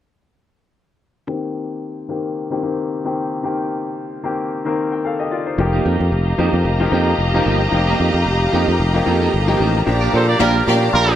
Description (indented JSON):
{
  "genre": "disco",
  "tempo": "112 BPM",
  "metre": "4/4",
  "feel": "swing 56% on 16ths",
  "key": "unclear",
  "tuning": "A4 = 438 Hz",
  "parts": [
    { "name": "bright baby grand piano", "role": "accompaniment", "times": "1.3-11.2 s", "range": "Eb3 to G5", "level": "-21 LUFS", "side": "left 3 dB", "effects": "low-pass filter" },
    { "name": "clean electric guitar", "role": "accompaniment", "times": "5.6-11.1 s", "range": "Bb3 to G4", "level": "-24 LUFS", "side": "right 8 dB", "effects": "spring reverb, low-pass filter" },
    { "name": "rich studio string section", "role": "sustained chords", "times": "5.6-11.2 s", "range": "G4 to Bb5", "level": "-21 LUFS", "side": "left 1 dB", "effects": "low-pass filter" },
    { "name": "fingered electric bass", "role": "bass", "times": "5.6-11.1 s", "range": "F1 to Bb2", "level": "-18 LUFS", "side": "equal", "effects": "none" },
    { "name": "clear horn section", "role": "stabs", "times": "10.1-11.1 s", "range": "G3 to D5", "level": "-18 LUFS", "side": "right 3 dB", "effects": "none" },
    { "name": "clear studio string section", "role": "second line", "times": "10.4-10.8 s", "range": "Bb3 to D5", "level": "-20 LUFS", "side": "right 1 dB", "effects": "none" }
  ],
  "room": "light reverb, small room ambience",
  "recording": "none",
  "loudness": "-16 LUFS",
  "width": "side -11 dB against mid",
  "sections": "1.3-9.9 A section; 9.9-11.2 B section",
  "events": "filter sweep 1.3-9.9",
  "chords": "1.3 Cm7; 5.6 F9sus4; 9.9 Bb6"
}